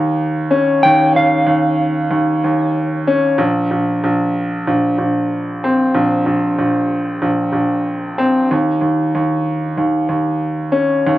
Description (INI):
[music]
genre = hip hop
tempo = 94 BPM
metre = 4/4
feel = swing 63% on 16ths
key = Bb dorian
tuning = A4 = 440 Hz
[part]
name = mellow electric guitar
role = melody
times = 0.0-2.7 s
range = F5 to G5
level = -15 LUFS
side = right 1 dB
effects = high-pass filter, low-pass filter, analog delay
[part]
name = warm upright piano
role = accompaniment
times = 0.0-11.2 s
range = Bb1 to Db4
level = -14 LUFS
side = equal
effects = cassette tape, high-pass filter, low-pass filter
[sound]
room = wet small room reverb, RT60 0.6 s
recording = cassette tape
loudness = -14 LUFS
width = side -15 dB against mid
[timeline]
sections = 0.0-3.4 A section; 3.4-11.2 B section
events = none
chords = 0.0 Ebsus2; 3.4 Bbsus2; 8.5 Dbsus2/Eb